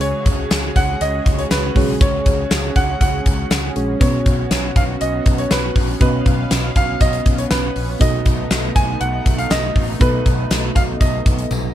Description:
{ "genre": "1980s-style pop", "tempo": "120 BPM", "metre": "4/4", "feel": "straight", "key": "unclear", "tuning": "A4 = 441 Hz", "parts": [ { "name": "clear concert grand piano", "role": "melody", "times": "0.0-11.7 s", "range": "Cb5 to Ab5", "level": "-23 LUFS", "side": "right 1 dB", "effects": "digital delay, plate reverb" }, { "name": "mellow FM electric piano", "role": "accompaniment", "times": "0.0-11.7 s", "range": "Cb3 to Eb5", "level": "-24 LUFS", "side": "right 1 dB", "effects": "chorus" }, { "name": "lush unison pad", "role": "sustained chords", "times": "0.0-11.7 s", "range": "Db3 to F5", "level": "-27 LUFS", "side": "right 1 dB", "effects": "chorus, plate reverb" }, { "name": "mellow fretless electric bass", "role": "bass", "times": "0.0-11.7 s", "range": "A1 to Db2", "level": "-23 LUFS", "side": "equal", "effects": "none" }, { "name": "gated 80s drum kit", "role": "drums", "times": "0.0-11.6 s", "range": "hi-hat, kick drum, snare drum, tambourine, toms", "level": "-17 LUFS", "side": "equal", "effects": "none" }, { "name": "tambourine", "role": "percussion", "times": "0.5-11.6 s", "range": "none", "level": "-35 LUFS", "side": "left 3 dB", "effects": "none" } ], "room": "light reverb", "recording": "none", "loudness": "-15 LUFS", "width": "side -12 dB against mid", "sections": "0.0-11.7 A section", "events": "drum fill 11.5", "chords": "0.0 Dbsus4; 4.0 Cbsus2; 8.0 Cb7" }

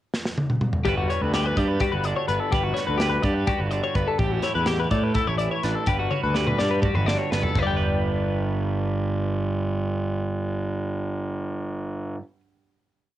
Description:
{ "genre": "math rock and midwest emo", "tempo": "250 BPM (eighths)", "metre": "7/8", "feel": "straight", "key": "G major", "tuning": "A4 = 440 Hz", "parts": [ { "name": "modern studio drum kit", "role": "drums", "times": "0.1-7.7 s", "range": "china cymbal, hi-hat, kick drum, snare drum, toms", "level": "-26 LUFS", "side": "equal", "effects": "cassette tape" }, { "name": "twelve-string electric guitar", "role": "arpeggios", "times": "0.8-12.3 s", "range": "F#4 to G5", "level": "-26 LUFS", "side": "left 7 dB", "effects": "warbly pitch drift, cassette tape" }, { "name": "twelve-string electric guitar", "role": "accompaniment", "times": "0.9-12.4 s", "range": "G2 to B4", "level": "-29 LUFS", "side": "right 7 dB", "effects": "spring reverb, cassette tape" }, { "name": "fuzz picked electric bass", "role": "bass", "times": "0.9-12.2 s", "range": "G1 to A2", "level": "-26 LUFS", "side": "equal", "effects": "overdrive" } ], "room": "little or no reverb", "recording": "home recording on cassette", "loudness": "-22 LUFS", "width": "side -13 dB against mid", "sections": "0.0-0.9 pickup bar; 0.9-7.6 A section; 7.6-10.9 final chord", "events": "drum fill 0.1-0.9, 6.1-7.6", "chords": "0.0 N.C.; 0.9 Gmaj7; 4.2 A7sus4; 5.9 Gmaj7; 7.6 G" }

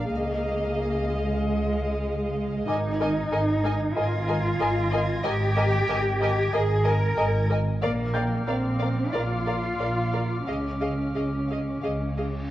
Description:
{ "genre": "cinematic, suspense film score", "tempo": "93 BPM", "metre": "4/4", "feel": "straight", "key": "unclear", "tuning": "A4 = 440 Hz", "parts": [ { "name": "muted studio violin section", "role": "melody", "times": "0.0-12.3 s", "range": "F5 to Ab5", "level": "-36 LUFS", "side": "left 2 dB", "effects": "none" }, { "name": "muted chamber violin section", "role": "second line", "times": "0.0-12.3 s", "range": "D5 to Eb5", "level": "-33 LUFS", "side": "left 1 dB", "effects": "none" }, { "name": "muted chamber viola section", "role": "accompaniment", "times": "0.0-12.3 s", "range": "Ab4 to Bb4", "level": "-33 LUFS", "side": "equal", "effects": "none" }, { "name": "muted chamber cello section", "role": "bass", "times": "0.0-12.5 s", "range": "Ab3 to Bb4", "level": "-28 LUFS", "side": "right 1 dB", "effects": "none" }, { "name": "muted chamber double bass section", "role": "bass", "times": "0.0-12.4 s", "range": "Ab1 to Db2", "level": "-27 LUFS", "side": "equal", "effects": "none" }, { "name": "warm baby grand piano", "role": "texture", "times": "0.0-10.5 s", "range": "Eb5 to G6", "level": "-37 LUFS", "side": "left 2 dB", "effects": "none" }, { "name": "muted chamber violin section", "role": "texture", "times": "2.7-12.5 s", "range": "D6 to Bb6", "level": "-39 LUFS", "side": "left 2 dB", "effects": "none" }, { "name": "reverse cymbal", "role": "sound effects", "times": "12.1-12.5 s", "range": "none", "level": "-50 LUFS", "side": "left 1 dB", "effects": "none" } ], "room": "moderate scoring stage reverb, RT60 1.8 s", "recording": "worn, warbling old tape, cassette tape, warbly pitch drift", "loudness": "-23 LUFS", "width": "side -14 dB against mid", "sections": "0.0-12.5 A section", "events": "reverse cymbal 12.1-12.5", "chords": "0.1 Dbadd9; 2.7 Absus2; 7.8 Bb; 10.5 Dbadd9" }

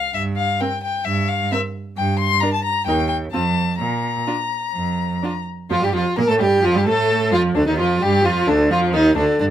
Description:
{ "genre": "quick classical-period movement for string quartet", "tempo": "130 BPM", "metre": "4/4", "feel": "rubato", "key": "Bb major", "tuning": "A4 = 445 Hz", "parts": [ { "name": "rich violin", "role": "melody", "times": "0.0-9.2 s", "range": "D4 to C6", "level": "-22 LUFS", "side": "left 6 dB", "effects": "none" }, { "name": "bright cello", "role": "bass", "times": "0.1-9.5 s", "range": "D2 to Bb2", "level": "-23 LUFS", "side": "right 3 dB", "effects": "none" }, { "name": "clear violin", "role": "second line", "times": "0.6-9.4 s", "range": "D4 to Bb4", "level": "-20 LUFS", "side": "equal", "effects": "none" }, { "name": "rich viola", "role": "accompaniment", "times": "0.6-9.4 s", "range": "D3 to Eb4", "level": "-21 LUFS", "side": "right 2 dB", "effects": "none" } ], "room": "moderate studio reverb, RT60 0.6 s", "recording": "none", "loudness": "-17 LUFS", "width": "side -11 dB against mid", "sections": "0.0-5.7 A section; 5.7-9.5 B section", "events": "none", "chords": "0.1 N.C.; 2.0 Gm; 2.9 Eb; 3.3 F; 3.8 Bb; 5.7 Bb5/F; 6.6 F; 7.6 Ebmaj9/D" }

